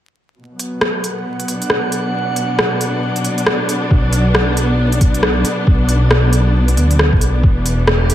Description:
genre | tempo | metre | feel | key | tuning
future garage | 136 BPM | 4/4 | swing 61% on 16ths | unclear | A4 = 441 Hz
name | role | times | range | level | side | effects
warm studio string section | sustained chords | 0.4-8.1 s | B2 to G4 | -20 LUFS | left 1 dB | sidechain pumping, low-pass filter
drifting glass-harmonics texture | texture | 1.1-3.9 s | F#5 | -27 LUFS | right 5 dB | chorus, built-in reverb
garage drum kit | drums | 0.6-8.1 s | hi-hat, rim click | -19 LUFS | equal | none
dark detuned saw bass | bass | 3.9-8.1 s | E1 to D2 | -14 LUFS | equal | sidechain pumping
electronic kick drum | drums | 3.9-7.5 s | none | -13 LUFS | equal | none
room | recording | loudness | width
light reverb | vinyl crackle | -13 LUFS | side -12 dB against mid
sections
0.4-3.9 A section; 3.9-8.1 B section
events
filter sweep on string section 0.4-3.9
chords
0.4 Bm; 7.4 Em7

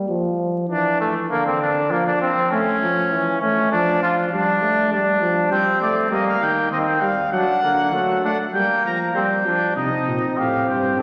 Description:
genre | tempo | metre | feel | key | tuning
classical, imitative canzona for brass ensemble | 99 BPM | 4/4 | straight | G minor | A4 = 440 Hz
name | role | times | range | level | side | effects
mellow euphonium | accompaniment | 0.0-11.0 s | D3 to C4 | -25 LUFS | equal | none
clear flugelhorn | second line | 0.7-11.0 s | A3 to A4 | -23 LUFS | equal | none
warm trumpet | melody | 5.5-11.0 s | C5 to Bb5 | -24 LUFS | equal | none
mellow tuba | bass | 9.8-11.0 s | F#2 to C3 | -29 LUFS | equal | none
room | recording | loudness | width
wet concert hall reverb, RT60 2.4 s | vinyl crackle | -20 LUFS | mono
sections
0.0-9.8 A section; 9.8-11.0 B section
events
none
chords
0.1 Dm/F; 1.3 Bb/D; 2.5 A; 3.7 Dm/F; 6.1 Eb; 7.3 D; 8.5 Gm; 9.8 Cm

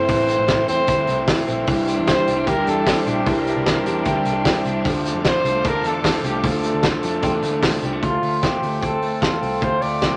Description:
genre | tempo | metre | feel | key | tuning
jangly indie pop | 151 BPM | 4/4 | straight | D minor | A4 = 442 Hz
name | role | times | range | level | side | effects
warm trumpet | melody | 0.0-10.2 s | F4 to D5 | -25 LUFS | equal | none
overdriven electric guitar | accompaniment | 0.0-8.0 s | A2 to F4 | -28 LUFS | equal | none
string machine, violas | sustained chords | 0.0-8.0 s | G4 to D6 | -33 LUFS | equal | none
electric guitar through a small old amp | arpeggios | 0.0-10.2 s | E3 to G4 | -26 LUFS | equal | none
vintage muted picked electric bass | bass | 0.0-10.2 s | A1 to F2 | -32 LUFS | equal | none
loose indie drum kit | drums | 0.1-10.1 s | hi-hat, kick drum, snare drum | -25 LUFS | equal | none
room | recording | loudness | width
wet studio reverb, RT60 0.5 s | none | -20 LUFS | mono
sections
0.0-8.0 A section; 8.0-10.2 B section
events
none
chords
0.0 Am; 1.7 Cadd9; 4.8 Dm; 8.0 Dm7

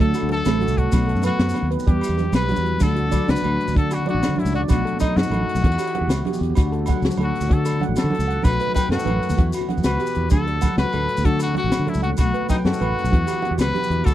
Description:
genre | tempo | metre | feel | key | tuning
highlife guitar band | 128 BPM (dotted quarters) | 12/8 | straight | D major | A4 = 440 Hz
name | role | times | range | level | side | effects
bright trumpet | melody | 0.0-14.1 s | D#4 to B4 | -26 LUFS | left 2 dB | none
nylon-string guitar | accompaniment | 0.0-14.1 s | F#2 to F#4 | -28 LUFS | left 9 dB | none
handpan | arpeggios | 0.0-14.1 s | G3 to G5 | -26 LUFS | right 4 dB | slapback echo
fingered electric bass | bass | 0.0-14.1 s | A1 to D3 | -23 LUFS | equal | none
compact cocktail drum kit | drums | 0.0-14.1 s | crash cymbal, hi-hat, kick drum, snare drum | -20 LUFS | equal | none
agogo bells | percussion | 0.1-14.1 s | none | -37 LUFS | right 5 dB | none
maracas | percussion | 0.1-14.1 s | none | -41 LUFS | left 4 dB | none
congas | percussion | 0.2-14.1 s | none | -29 LUFS | right 6 dB | none
room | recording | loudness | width
little or no reverb | dry, close 1970s-style studio recording | -18 LUFS | side -13 dB against mid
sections
0.0-2.8 A section; 2.8-14.1 B section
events
none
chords
0.0 D; 0.9 B7; 1.9 Emadd9; 2.8 D; 4.7 B7; 5.6 Emadd9; 6.6 D; 8.4 B7; 9.4 Emadd9; 10.3 D; 12.2 B7; 13.1 Emadd9

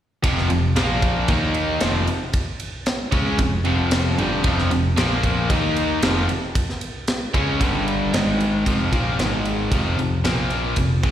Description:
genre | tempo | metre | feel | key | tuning
hard rock | 114 BPM | 4/4 | straight | F minor | A4 = 439 Hz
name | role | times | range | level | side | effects
cranked stack guitar | riff | 0.2-11.1 s | F2 to Eb4 | -25 LUFS | left 7 dB | overdrive, slapback echo
cranked stack guitar | riff | 0.2-11.1 s | F2 to Eb4 | -25 LUFS | right 7 dB | overdrive, slapback echo
overdriven electric guitar | riff | 0.2-8.7 s | F2 to Eb4 | -27 LUFS | equal | slapback echo
picked electric bass | bass | 0.2-11.1 s | F1 to Eb2 | -24 LUFS | equal | none
tight metal drum kit | drums | 0.2-11.1 s | kick drum, ride cymbal, snare drum | -24 LUFS | equal | none
room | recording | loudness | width
light reverb, small room reverb | live gig heard through the venue's PA, recital hall reverb | -18 LUFS | side -10 dB against mid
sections
0.2-8.7 A section; 8.7-11.1 B section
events
none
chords
0.2 F5; 0.8 Bb5; 1.3 Eb5; 1.8 Fm; 5.0 Bb5; 5.5 Eb5; 6.0 Fm; 7.6 G5; 8.1 Ab5; 8.7 F5; 9.2 Ab5; 9.7 F5; 10.2 Bb5; 10.8 F5

